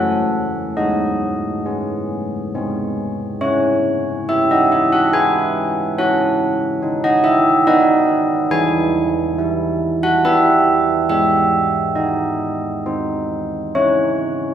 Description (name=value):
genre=classical, tune for church bells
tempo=70 BPM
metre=3/4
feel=straight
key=C# minor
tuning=A4 = 438 Hz
part: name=carillon bells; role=solo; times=0.0-14.5 s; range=E3 to G#5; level=-15 LUFS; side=right 1 dB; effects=none
room=wet scoring stage reverb, RT60 1.8 s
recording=heard from further back in the room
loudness=-15 LUFS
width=side -9 dB against mid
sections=0.0-3.4 A section; 3.4-14.5 B section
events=none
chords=0.0 F#m; 0.8 G#sus4; 2.5 G#; 3.4 C#m; 6.0 B/C#; 8.5 E; 11.1 G#; 13.7 C#m